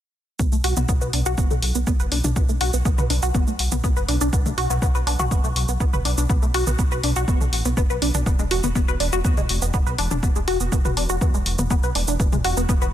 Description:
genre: melodic techno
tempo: 122 BPM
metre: 4/4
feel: straight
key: B minor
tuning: A4 = 440 Hz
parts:
  - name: tight sequenced synth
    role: arpeggios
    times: 0.4-12.9 s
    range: G#3 to B4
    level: -25 LUFS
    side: left 1 dB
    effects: chorus, phaser, sidechain pumping, ping-pong delay
  - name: dark detuned saw bass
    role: bass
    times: 0.4-12.9 s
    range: E1 to E2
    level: -24 LUFS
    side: equal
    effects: sidechain pumping
  - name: electronic kick drum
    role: drums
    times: 0.4-12.8 s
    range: none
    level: -21 LUFS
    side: equal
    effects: none
  - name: punchy analog drum machine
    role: drums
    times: 0.4-12.9 s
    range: hi-hat, shaker, toms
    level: -27 LUFS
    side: right 1 dB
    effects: none
room: little or no reverb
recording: dense, heavily limited modern master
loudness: -19 LUFS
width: side -11 dB against mid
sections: 0.4-12.9 A section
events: none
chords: 0.4 B5; 8.3 E5

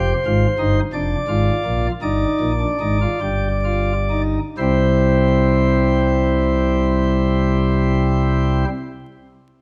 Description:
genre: classical, baroque-style 3-part fugue for pipe organ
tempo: 41-62 BPM (dotted quarters)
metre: 6/8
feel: straight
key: unclear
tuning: A4 = 440 Hz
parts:
  - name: pipe organ, sparkling flutes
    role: solo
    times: 0.0-8.7 s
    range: F1 to D5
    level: -18 LUFS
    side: equal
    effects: none
room: moderate scoring stage reverb, RT60 1.7 s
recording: vinyl crackle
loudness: -18 LUFS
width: mono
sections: 0.0-4.6 A section; 4.6-9.6 B section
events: slowing down 0.0-4.6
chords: 0.0 Fm; 0.9 Ddim/F; 2.0 Ebmaj9/G; 3.2 G5; 4.6 C

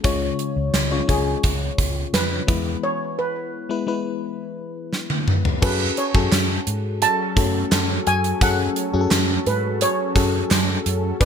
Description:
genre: 1980s-style pop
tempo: 86 BPM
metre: 4/4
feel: straight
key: F# minor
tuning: A4 = 441 Hz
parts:
  - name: FM electric piano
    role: accompaniment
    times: 0.0-11.2 s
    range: G#2 to D5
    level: -26 LUFS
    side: left 6 dB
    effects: chorus
  - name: vintage muted fingered electric bass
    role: bass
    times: 0.0-11.2 s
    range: G#1 to G#2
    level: -25 LUFS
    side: equal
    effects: none
  - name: gated 80s drum kit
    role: drums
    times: 0.0-11.2 s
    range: crash cymbal, hi-hat, kick drum, snare drum, tambourine, toms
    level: -20 LUFS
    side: right 1 dB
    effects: gated reverb
  - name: steel pan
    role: melody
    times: 1.1-11.2 s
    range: G#4 to A5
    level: -24 LUFS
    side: right 2 dB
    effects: none
  - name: group handclap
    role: percussion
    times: 6.3-10.7 s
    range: none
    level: -36 LUFS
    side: right 4 dB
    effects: none
  - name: mellow synth brass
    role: stabs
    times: 7.0-11.2 s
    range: F#3 to B4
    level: -28 LUFS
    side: right 3 dB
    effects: chorus
room: light reverb, small room ambience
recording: none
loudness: -19 LUFS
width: side -7 dB against mid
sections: 0.0-5.6 A section; 5.6-11.2 B section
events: break 2.8-5.6; drum fill 4.9-5.6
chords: 0.0 C#; 2.5 E; 5.6 F#madd9

